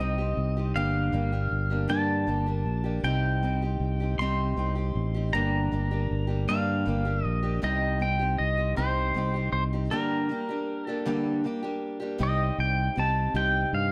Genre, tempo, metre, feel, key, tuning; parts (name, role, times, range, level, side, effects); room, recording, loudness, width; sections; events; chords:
folk rock and heartland rock; 52 BPM (dotted quarters); 6/8; straight; C dorian; A4 = 440 Hz
pedal steel guitar; melody; 0.0-13.9 s; Bb4 to C6; -33 LUFS; equal
picked acoustic archtop guitar; accompaniment; 0.0-13.9 s; G2 to G4; -33 LUFS; equal
fingered electric bass; bass; 0.0-13.9 s; G1 to G2; -30 LUFS; equal
light reverb, small room reverb; -27 LUFS; mono
0.0-12.2 A section; 12.2-13.9 B section
break 9.9-12.2
0.0 Cm; 0.8 Gm; 3.0 Cm; 5.3 Gm; 7.6 Cm; 9.9 Gm; 12.2 Cm